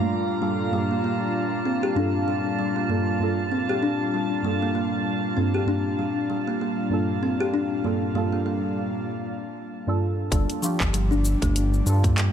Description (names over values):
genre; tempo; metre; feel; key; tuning
organic downtempo; 97 BPM; 4/4; swing 57% on 16ths; G minor; A4 = 437 Hz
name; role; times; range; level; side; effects
deep mellow chord stab; accompaniment; 0.0-12.3 s; G2 to A4; -28 LUFS; right 2 dB; chorus, sidechain pumping, ping-pong delay
airy breathy pad; sustained chords; 0.0-12.3 s; Bb2 to F5; -30 LUFS; equal; chorus, sidechain pumping
drifting glass-harmonics texture; texture; 0.0-9.1 s; Bb3 to Bb5; -34 LUFS; right 3 dB; chorus, built-in reverb
kalimba; arpeggios; 0.4-12.3 s; F3 to G4; -27 LUFS; left 1 dB; vintage 12-bit sampler grit, ping-pong delay
round analog bass; bass; 10.3-12.3 s; G1 to G2; -21 LUFS; equal; tube saturation
afro-pop drum kit; drums; 10.3-12.3 s; handclaps, hi-hat, shaker; -30 LUFS; left 1 dB; none
electronic kick drum; drums; 10.3-12.1 s; none; -26 LUFS; equal; none
room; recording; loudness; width
light reverb, digital ambience; none; -22 LUFS; side -8 dB against mid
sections
0.0-10.3 A section; 10.3-12.3 B section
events
break 9.1-10.3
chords
0.0 Gm7